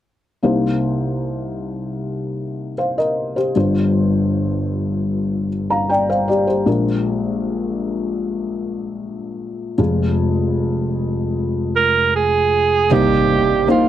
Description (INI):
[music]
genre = pop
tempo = 77 BPM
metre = 4/4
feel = straight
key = C minor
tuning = A4 = 441 Hz
[part]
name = felt-muted upright piano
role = accompaniment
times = 0.4-13.9 s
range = F1 to Bb5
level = -18 LUFS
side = left 1 dB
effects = none
[part]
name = bright alto saxophone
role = melody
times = 11.8-13.9 s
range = F4 to Bb4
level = -15 LUFS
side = right 5 dB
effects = none
[part]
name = flamenco guitar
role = arpeggios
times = 12.9-13.9 s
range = C3 to G4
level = -22 LUFS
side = right 13 dB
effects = none
[part]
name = impact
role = sound effects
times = 12.9-13.9 s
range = none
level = -26 LUFS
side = right 1 dB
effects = none
[sound]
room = moderate booth ambience, RT60 0.2 s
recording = dry, close 1970s-style studio recording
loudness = -17 LUFS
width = side -11 dB against mid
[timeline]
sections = 0.4-12.9 A section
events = impact 12.9-13.9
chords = 0.4 Cm7; 3.6 G7sus4; 6.7 Bb7; 9.8 Fm; 12.9 Cm7